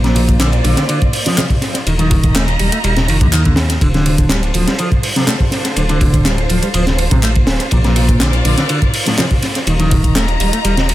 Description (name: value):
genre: breakbeat, breaks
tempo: 123 BPM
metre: 4/4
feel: straight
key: D phrygian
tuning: A4 = 444 Hz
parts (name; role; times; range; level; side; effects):
- rich chamber string section; sustained chords; 0.0-10.9 s; D3 to Bb5; -22 LUFS; right 1 dB; sidechain pumping
- electric guitar with an envelope filter; riff; 0.0-10.7 s; A2 to A3; -19 LUFS; right 1 dB; overdrive, analog delay
- dark detuned saw bass; bass; 0.0-10.9 s; D1 to Eb2; -16 LUFS; equal; tube saturation
- crunchy breakbeat drum kit; drums; 0.0-10.9 s; hi-hat, kick drum, ride cymbal, snare drum; -16 LUFS; equal; none
- house drum kit; drums; 0.0-10.9 s; handclaps, hi-hat, ride cymbal; -23 LUFS; right 1 dB; analog delay
- congas; percussion; 0.0-10.9 s; none; -26 LUFS; left 3 dB; none
room: little or no reverb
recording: echo-heavy mix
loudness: -12 LUFS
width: side -14 dB against mid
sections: 0.0-10.9 A section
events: none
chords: 0.0 Bbadd9; 1.9 Ebsus2; 3.8 Dm7; 7.7 Bbadd9; 9.7 Ebsus2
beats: 0.40 0.89 1.38 | 1.86 2.35 2.84 3.33 | 3.82 4.30 4.79 5.28 | 5.77 6.25 6.74 7.23 | 7.72 8.21 8.69 9.18 | 9.67 10.16 10.64